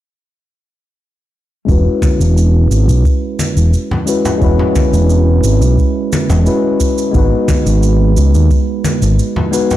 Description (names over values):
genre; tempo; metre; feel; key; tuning
sunset chillout; 88 BPM; 4/4; straight; E major; A4 = 438 Hz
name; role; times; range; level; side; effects
bell-like tine electric piano; accompaniment; 1.7-9.8 s; G#3 to B4; -16 LUFS; moving between left 4 dB and right 7 dB; auto-pan, low-pass filter, digital delay
overdriven fingered electric bass; bass; 1.7-9.2 s; E1 to D#2; -10 LUFS; equal; none
cabasa; drums; 1.7-9.8 s; none; -27 LUFS; right 5 dB; none
electronic kick drum; drums; 1.7-8.7 s; none; -14 LUFS; equal; none
congas; percussion; 2.0-9.8 s; none; -19 LUFS; left 1 dB; none
room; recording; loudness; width
light reverb, digital ambience; blown-out, overdriven recording, overdrive; -10 LUFS; side -14 dB against mid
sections
1.7-9.8 A section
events
filter sweep on tine electric piano 1.7-9.8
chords
1.7 E69; 7.1 G#m7